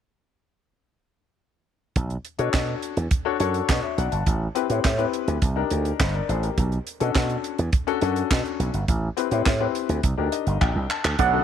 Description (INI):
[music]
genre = early-eighties boogie funk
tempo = 104 BPM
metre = 4/4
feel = straight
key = unclear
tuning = A4 = 440 Hz
[part]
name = slap bass with an envelope filter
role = bass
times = 2.0-11.4 s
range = G1 to B2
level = -24 LUFS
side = right 2 dB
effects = none
[part]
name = tight funk drum kit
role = drums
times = 2.0-11.3 s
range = handclaps, hi-hat, kick drum, snare drum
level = -25 LUFS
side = right 2 dB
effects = none
[part]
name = warm concert grand piano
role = accompaniment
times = 2.4-11.4 s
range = C4 to A5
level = -26 LUFS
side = left 12 dB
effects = none
[part]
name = warm velvety synth lead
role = melody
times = 11.2-11.4 s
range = F#5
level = -20 LUFS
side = right 4 dB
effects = chorus
[part]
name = accordion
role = sustained chords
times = 11.2-11.4 s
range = D3 to B3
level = -30 LUFS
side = equal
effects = light tremolo tuning
[part]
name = electric guitar with an envelope filter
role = riff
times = 11.2-11.4 s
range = D4 to C#5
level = -24 LUFS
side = right 17 dB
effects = lush chorus
[sound]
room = little or no reverb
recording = 1960s-style stereo with parts hard left and right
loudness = -21 LUFS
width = side -9 dB against mid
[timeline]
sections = 2.0-11.2 A section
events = grand piano fill 10.0-11.2; drum fill 10.6-11.2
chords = 2.0 Bm9; 4.3 Am9; 5.4 Cm9; 6.6 Bm9; 8.9 Am9; 10.0 Cm9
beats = | 1.96 2.54 3.11 3.69 | 4.27 4.84 5.42 6.00 | 6.57 7.15 7.73 8.30 | 8.88 9.46 10.04 10.61 | 11.19